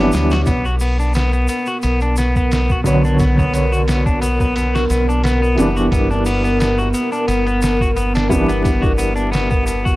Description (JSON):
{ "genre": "trip hop", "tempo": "88 BPM", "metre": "4/4", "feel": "swing 54% on 16ths", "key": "B harmonic minor", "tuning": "A4 = 440 Hz", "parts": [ { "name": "dark upright piano", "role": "accompaniment", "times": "0.0-10.0 s", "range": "D3 to C#5", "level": "-20 LUFS", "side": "equal", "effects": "tremolo, tape echo" }, { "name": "dark analog pad", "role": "sustained chords", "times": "0.0-10.0 s", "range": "B3 to C#5", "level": "-22 LUFS", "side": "equal", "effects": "chorus" }, { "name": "clean electric guitar", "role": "arpeggios", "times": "0.0-9.9 s", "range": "B3 to F#4", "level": "-21 LUFS", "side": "left 1 dB", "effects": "vintage 12-bit sampler grit, tape echo" }, { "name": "deep dub fingered electric bass", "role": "bass", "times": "0.0-10.0 s", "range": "F#1 to D2", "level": "-19 LUFS", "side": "equal", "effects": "none" }, { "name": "trip hop sampler-style drum kit", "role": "drums", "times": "0.1-10.0 s", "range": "hi-hat, kick drum, ride cymbal, snare drum", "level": "-21 LUFS", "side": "equal", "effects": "studio reverb" }, { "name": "tube shaker", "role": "percussion", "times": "0.1-10.0 s", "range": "none", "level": "-35 LUFS", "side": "left 2 dB", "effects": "none" } ], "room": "little or no reverb", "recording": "dry, gritty hardware recording, transformer saturation, vinyl crackle", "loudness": "-14 LUFS", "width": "side -18 dB against mid", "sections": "0.0-10.0 A section", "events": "none", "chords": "0.5 Bmadd9; 5.9 G6" }